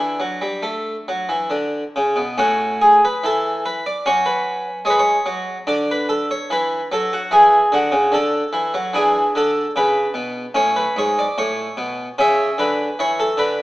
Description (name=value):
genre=classical, baroque-style suite movement for harpsichord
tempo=74 BPM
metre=4/4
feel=rubato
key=A major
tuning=A4 = 440 Hz
part: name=harpsichord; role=solo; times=0.0-13.6 s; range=G#2 to E5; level=-16 LUFS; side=equal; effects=none
room=moderate recital hall reverb, RT60 1.4 s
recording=small speaker sound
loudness=-16 LUFS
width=side -17 dB against mid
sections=0.0-2.4 A section; 2.4-13.6 A section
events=none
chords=0.0 D; 2.4 A; 4.0 F#5; 5.7 D; 8.9 E5; 10.6 A; 12.2 A/C#